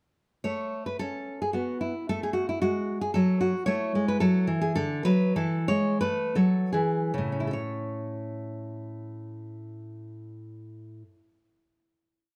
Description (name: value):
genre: classical, baroque-style dance for nylon-string guitar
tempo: 72-114 BPM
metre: 3/4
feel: rubato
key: A major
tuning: A4 = 440 Hz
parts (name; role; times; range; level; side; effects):
- nylon-string guitar; solo; 0.4-11.4 s; A2 to C#5; -28 LUFS; equal; none
room: light reverb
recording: close, detailed microphones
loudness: -27 LUFS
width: mono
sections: 0.5-7.5 A section; 7.5-12.4 final chord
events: slowing down 2.9-7.5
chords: 0.5 A; 2.1 F#madd9; 3.7 A5; 4.8 D; 5.4 Esus4; 6.7 E; 7.5 A